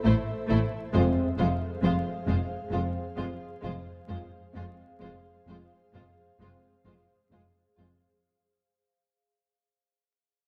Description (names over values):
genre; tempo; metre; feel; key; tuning
cinematic, suspense film score; 66 BPM; 4/4; straight; unclear; A4 = 440 Hz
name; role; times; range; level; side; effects
rich studio viola section; accompaniment; 0.0-7.9 s; Ab3 to A3; -36 LUFS; equal; none
ethereal airy pad; sustained chords; 0.0-8.2 s; Ab4 to F5; -43 LUFS; equal; ensemble chorus, built-in reverb
rich studio cello section; bass; 0.0-7.9 s; F2 to A2; -37 LUFS; equal; none
clear studio violin section; melody; 0.1-7.9 s; C5; -45 LUFS; equal; none
rich studio violin section; second line; 0.1-7.9 s; E4 to F4; -39 LUFS; equal; none
rich studio cello section; riff; 0.1-8.1 s; F2 to F3; -36 LUFS; equal; none
warm studio double bass section; bass; 0.1-7.9 s; F1 to A1; -33 LUFS; equal; none
warm French horn section; sustained chords; 0.9-6.7 s; Ab3 to C4; -34 LUFS; equal; none
room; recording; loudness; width
wet scoring stage reverb, RT60 1.6 s; dark, warm production, vinyl crackle; -28 LUFS; mono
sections
0.0-8.2 A section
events
fade-out 0.0-8.2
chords
0.0 Am; 0.9 Fm